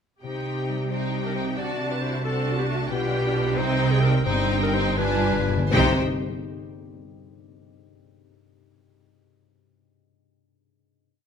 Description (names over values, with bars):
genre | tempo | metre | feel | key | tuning
classical, dramatic, fast romantic movement for symphony orchestra | 76-92 BPM (dotted quarters) | 6/8 | rubato | C minor | A4 = 439 Hz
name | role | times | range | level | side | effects
rich symphonic violin section | melody | 0.2-6.0 s | G5 to A5 | -32 LUFS | equal | none
clear clarinet | second line | 0.2-5.9 s | F#4 to D5 | -29 LUFS | left 2 dB | none
clear symphonic violin section | second line | 0.2-6.0 s | A3 to C5 | -32 LUFS | left 2 dB | none
warm symphonic viola section | accompaniment | 0.2-6.0 s | C4 to G4 | -30 LUFS | equal | none
concert harp | arpeggios | 0.2-6.0 s | G2 to Eb5 | -32 LUFS | left 11 dB | none
clear symphonic cello section | bass | 0.2-6.0 s | G2 to C3 | -29 LUFS | right 2 dB | none
clear symphonic double bass section | bass | 0.2-6.0 s | G1 to C2 | -27 LUFS | right 4 dB | none
timpani | percussion | 5.0-6.0 s | G2 to C3 | -29 LUFS | left 1 dB | none
room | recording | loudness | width
moderate recital hall reverb, RT60 1.5 s | none | -21 LUFS | side -7 dB against mid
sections
0.2-5.7 A section; 5.7-7.2 final chord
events
slowing down 2.2-5.7; timpani fill 5.0-5.7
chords
0.2 Cm; 1.6 D7/C; 2.9 G7/B; 3.6 Cm; 4.3 Cm/G; 5.0 G7b9; 5.7 Cm